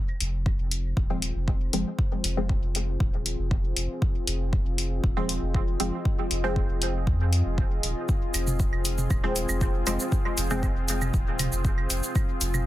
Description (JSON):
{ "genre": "dub techno", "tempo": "118 BPM", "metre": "4/4", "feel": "straight", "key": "F minor", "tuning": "A4 = 440 Hz", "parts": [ { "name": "deep dark ambient pad", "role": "sustained chords", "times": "0.7-12.7 s", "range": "C4 to F5", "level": "-34 LUFS", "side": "left 2 dB", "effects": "chorus, built-in reverb, sidechain pumping" }, { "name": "pure sine sub bass", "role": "bass", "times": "0.2-12.7 s", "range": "Eb1 to F2", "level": "-28 LUFS", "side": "equal", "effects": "sidechain pumping" }, { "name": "electronic hi-hat and cabasa", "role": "drums", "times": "0.2-12.6 s", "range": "none", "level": "-30 LUFS", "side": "left 1 dB", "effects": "none" }, { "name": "electronic kick drum", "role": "drums", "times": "0.5-12.3 s", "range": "none", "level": "-25 LUFS", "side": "equal", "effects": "none" }, { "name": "filtered dub chord stab", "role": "stabs", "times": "1.1-10.7 s", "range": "F3 to C4", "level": "-32 LUFS", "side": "equal", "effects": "chorus, phaser, sidechain pumping, dub echo" }, { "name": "electronic claves and toms", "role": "percussion", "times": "8.3-12.6 s", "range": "none", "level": "-34 LUFS", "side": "right 3 dB", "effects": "sidechain pumping on perc, sidechain pumping on toms, dub echo" } ], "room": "little or no reverb", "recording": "dense, heavily limited modern master", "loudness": "-24 LUFS", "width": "side -15 dB against mid", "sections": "0.0-12.7 A section", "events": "none", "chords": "0.0 Fm", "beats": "0.46 0.97 1.48 | 1.99 2.50 3.00 3.51 | 4.02 4.53 5.04 5.55 | 6.05 6.56 7.07 7.58 | 8.09 8.60 9.11 9.61 | 10.12 10.63 11.14 11.65 | 12.16" }